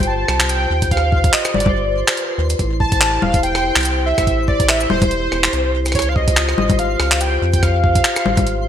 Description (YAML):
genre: IDM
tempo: 143 BPM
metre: 4/4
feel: swing 56% on 16ths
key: unclear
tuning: A4 = 438 Hz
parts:
  - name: warm velvety synth lead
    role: melody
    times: 0.0-8.7 s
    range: C5 to A5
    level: -20 LUFS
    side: right 1 dB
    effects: chorus, digital delay
  - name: vibraphone with soft mallets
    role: arpeggios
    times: 0.0-8.7 s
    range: E4 to C5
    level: -24 LUFS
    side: left 4 dB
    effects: ping-pong delay
  - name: rubbery square bass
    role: bass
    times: 0.0-8.7 s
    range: E1 to F2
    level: -20 LUFS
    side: equal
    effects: none
  - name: jungle sampler-style drum kit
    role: drums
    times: 0.0-8.6 s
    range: congas, handclaps, hi-hat, rim click, shaker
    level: -19 LUFS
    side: left 1 dB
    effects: gated reverb
  - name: twinkling granular texture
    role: texture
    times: 0.0-8.7 s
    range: C5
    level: -31 LUFS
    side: right 2 dB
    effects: built-in reverb
  - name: electronic kick drum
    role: drums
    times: 0.8-8.4 s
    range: none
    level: -19 LUFS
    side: equal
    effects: none
room: moderate plate reverb, RT60 1.5 s, digital ambience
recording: bright 1980s-style digital production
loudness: -14 LUFS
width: side -9 dB against mid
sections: 0.0-8.7 A section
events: none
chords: 0.0 Cm; 2.6 Am7; 5.9 Dbmaj7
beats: 0.07 0.49 | 0.91 1.33 1.75 2.17 | 2.59 3.01 3.43 3.85 | 4.27 4.69 5.11 5.53 | 5.95 6.37 6.79 7.21 | 7.63 8.05 8.47